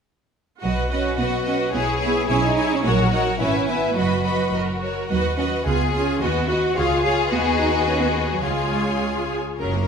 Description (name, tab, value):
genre	quick classical-period movement for string orchestra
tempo	108 BPM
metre	2/4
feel	straight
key	B major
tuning	A4 = 442 Hz
part	rich symphonic violin section	second line	0.6-9.9 s	G#4 to B5	-26 LUFS	left 3 dB	none
part	rich symphonic viola section	accompaniment	0.6-9.9 s	F#3 to B4	-25 LUFS	right 1 dB	none
part	dark symphonic cello section	bass	0.6-9.9 s	F#2 to G#4	-24 LUFS	right 3 dB	none
part	rich symphonic double bass section	bass	0.6-9.9 s	F#1 to D#2	-26 LUFS	right 2 dB	none
part	rich symphonic violin section	melody	1.2-9.9 s	E4 to A#5	-26 LUFS	left 7 dB	none
room	wet scoring stage reverb, RT60 1.7 s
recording	minimal, uncompressed stereo recording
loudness	-19 LUFS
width	side -6 dB against mid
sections	0.6-9.6 A section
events	none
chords	0.6 B; 1.7 C#m7/B; 2.8 F#/A#; 3.4 E/G#; 4.0 B/F#; 4.5 F#; 5.1 B/D#; 5.7 C#; 6.2 B/D#; 6.8 C#; 7.3 B/D#; 8.4 C#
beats	| 0.62 1.18 | 1.74 2.29 | 2.85 3.40 | 3.96 4.53 | 5.09 5.66 | 6.21 6.77 | 7.32 7.87 | 8.44 9.02 | 9.60